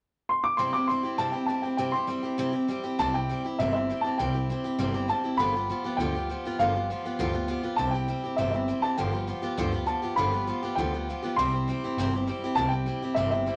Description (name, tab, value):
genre	rockabilly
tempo	200 BPM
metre	4/4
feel	straight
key	C major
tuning	A4 = 439 Hz
part	dark upright piano	melody	0.3-13.6 s	E5 to D6	-30 LUFS	equal	none
part	picked steel-string acoustic guitar	accompaniment	0.6-13.6 s	G2 to G4	-32 LUFS	equal	none
part	upright bass	bass	3.0-13.5 s	G1 to D2	-35 LUFS	equal	none
room	moderate small room reverb, RT60 0.5 s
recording	none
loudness	-28 LUFS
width	mono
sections	0.6-3.0 A section; 3.0-12.6 B section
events	none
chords	0.0 N.C.; 0.6 C; 5.4 G7; 7.8 C; 9.0 G7; 11.4 C